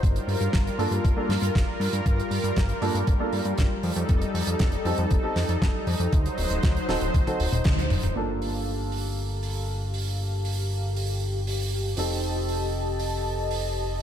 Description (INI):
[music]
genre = nu-disco, nu disco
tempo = 118 BPM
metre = 4/4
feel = straight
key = G minor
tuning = A4 = 439 Hz
[part]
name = lush unison pad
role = sustained chords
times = 0.0-14.0 s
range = F#3 to A5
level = -30 LUFS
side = left 1 dB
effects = chorus, sidechain pumping
[part]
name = fat analog bass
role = bass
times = 0.0-14.0 s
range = D1 to G2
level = -28 LUFS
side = equal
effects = none
[part]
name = damped 70s drum kit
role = drums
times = 0.0-13.6 s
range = hi-hat, snare drum, toms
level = -33 LUFS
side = right 1 dB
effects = small room ambience
[part]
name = electronic kick drum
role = drums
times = 0.0-7.8 s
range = none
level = -23 LUFS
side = equal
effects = small room ambience
[part]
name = dark baby grand piano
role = accompaniment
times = 0.8-14.0 s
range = Bb3 to A4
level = -32 LUFS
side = right 2 dB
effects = wide subtle chorus, sidechain pumping, analog delay
[sound]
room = moderate lush hall reverb, RT60 2.1 s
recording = dreamy mix soaked in reverb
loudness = -23 LUFS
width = side -10 dB against mid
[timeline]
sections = 0.0-8.2 A section; 8.2-14.0 B section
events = drum fill 7.1-8.2; band accent 7.7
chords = 0.0 Gm7; 3.8 F9; 6.1 D7b9; 8.2 Gm7; 12.0 F9